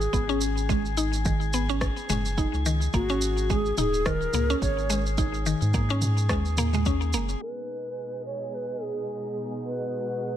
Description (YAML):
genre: organic downtempo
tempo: 107 BPM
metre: 4/4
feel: swing 57% on 16ths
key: G# minor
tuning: A4 = 440 Hz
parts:
  - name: breathy hollow Native American-style cedar flute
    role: melody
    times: 0.0-10.4 s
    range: F#4 to C#5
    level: -31 LUFS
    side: equal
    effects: ping-pong delay
  - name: round analog bass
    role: bass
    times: 0.0-7.4 s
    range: D#1 to G#2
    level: -27 LUFS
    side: equal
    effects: tube saturation
  - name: organic electronic drum kit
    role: drums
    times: 0.0-7.4 s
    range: rim click, shaker, toms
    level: -33 LUFS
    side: right 2 dB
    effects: none
  - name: drifting glass-harmonics texture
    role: texture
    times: 0.0-10.4 s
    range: G#4 to D#5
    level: -37 LUFS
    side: left 2 dB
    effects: chorus, built-in reverb
  - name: mallet-like synth pluck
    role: arpeggios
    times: 0.1-7.3 s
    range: D#3 to D#4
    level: -29 LUFS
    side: left 1 dB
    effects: chorus, ping-pong delay
  - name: electronic kick drum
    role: drums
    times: 0.1-7.0 s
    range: none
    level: -28 LUFS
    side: equal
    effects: overdrive
  - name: rich symphonic string section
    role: sustained chords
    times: 7.4-10.4 s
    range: B2 to G#4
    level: -35 LUFS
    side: equal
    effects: sidechain pumping, low-pass filter
room: light reverb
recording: low-pass filter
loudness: -24 LUFS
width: side -11 dB against mid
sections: 0.0-7.4 A section; 7.4-10.4 B section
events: filter sweep 7.4-10.4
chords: 0.0 G#5; 2.9 F# (rootless); 7.4 G#m